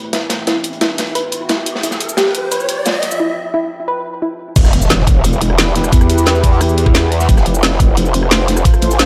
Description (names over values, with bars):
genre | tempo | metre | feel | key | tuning
dark technical drum and bass | 176 BPM | 4/4 | straight | E phrygian | A4 = 440 Hz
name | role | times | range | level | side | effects
deep dark ambient pad | sustained chords | 0.0-9.1 s | E4 to A5 | -26 LUFS | equal | chorus, built-in reverb, sidechain pumping
riser and impact | sound effects | 0.6-5.9 s | none | -24 LUFS | equal | none
soft round pluck | arpeggios | 0.1-4.3 s | E4 to B4 | -22 LUFS | equal | analog chorus, sidechain pumping, digital delay
crunchy breakbeat drum kit | drums | 0.1-9.1 s | hi-hat, snare drum | -25 LUFS | equal | high-pass filter on hats, small room ambience, high-pass filter on snare, high-pass filter on room
drum and bass drum kit | drums | 0.1-9.1 s | cabasa, crash cymbal, hi-hat, rim click, snare drum | -20 LUFS | equal | overdrive, high-pass filter on hats, small room ambience, high-pass filter on perc, high-pass filter on cymbals, high-pass filter on snare
growl bass | bass | 4.6-9.1 s | E1 to E2 | -16 LUFS | equal | chorus
electronic kick drum | drums | 4.6-8.7 s | none | -13 LUFS | equal | small room ambience
room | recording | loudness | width
light reverb, digital ambience | none | -14 LUFS | mono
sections
0.0-4.6 A section; 4.6-9.1 B section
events
build-up 0.0-4.6; riser 0.6-3.2; break 3.2-4.6; drop 4.6-9.1; impact 4.6-5.9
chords
0.0 Em; 1.8 F; 4.6 Em; 7.3 F